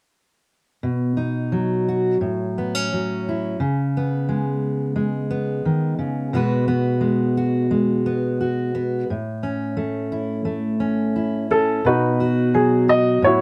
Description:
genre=acoustic folk-pop ballad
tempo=87 BPM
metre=4/4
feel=straight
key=unclear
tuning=A4 = 440 Hz
part: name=fingerpicked steel-string acoustic guitar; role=accompaniment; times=0.8-13.4 s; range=A2 to B4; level=-22 LUFS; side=equal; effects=none
part: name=warm upright piano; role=melody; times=11.5-13.4 s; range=D#4 to D#5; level=-20 LUFS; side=equal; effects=plate reverb
room=light reverb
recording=none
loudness=-22 LUFS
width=mono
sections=0.8-11.8 A section; 11.8-13.4 B section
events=none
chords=0.8 B; 2.2 F#m7/A; 3.6 C#5; 6.3 G#m7/B; 9.1 A; 11.8 B

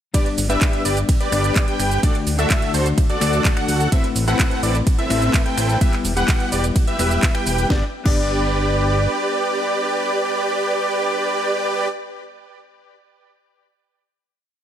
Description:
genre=EDM, festival progressive house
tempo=127 BPM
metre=4/4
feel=straight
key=G major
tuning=A4 = 443 Hz
part: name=mellow electric guitar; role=accompaniment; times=0.1-11.9 s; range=G2 to D5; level=-25 LUFS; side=left 5 dB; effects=harmonic tremolo, sidechain pumping, ping-pong delay
part: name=wide unison lead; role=arpeggios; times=0.1-11.9 s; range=C5 to G5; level=-26 LUFS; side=equal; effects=cassette tape, sidechain pumping, ping-pong delay
part: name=big supersaw lead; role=riff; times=0.1-11.9 s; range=C4 to G5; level=-23 LUFS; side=right 1 dB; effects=sidechain pumping, ping-pong delay
part: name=electronic kick drum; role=drums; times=0.1-8.2 s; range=none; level=-18 LUFS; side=equal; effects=none
part: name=house drum kit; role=drums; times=0.1-8.2 s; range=crash cymbal, finger snaps, handclaps, hi-hat, ride cymbal, shaker, snare drum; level=-26 LUFS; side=right 2 dB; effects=none
part: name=fat analog bass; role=bass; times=0.4-9.1 s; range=E1 to D2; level=-21 LUFS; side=equal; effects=sidechain pumping
room=light reverb, digital ambience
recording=none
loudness=-17 LUFS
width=side -10 dB against mid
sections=0.1-7.7 drop; 7.7-11.5 final chord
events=drop 0.1-7.7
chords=0.1 G; 2.0 D; 3.9 Amadd9; 5.8 Em; 7.7 G

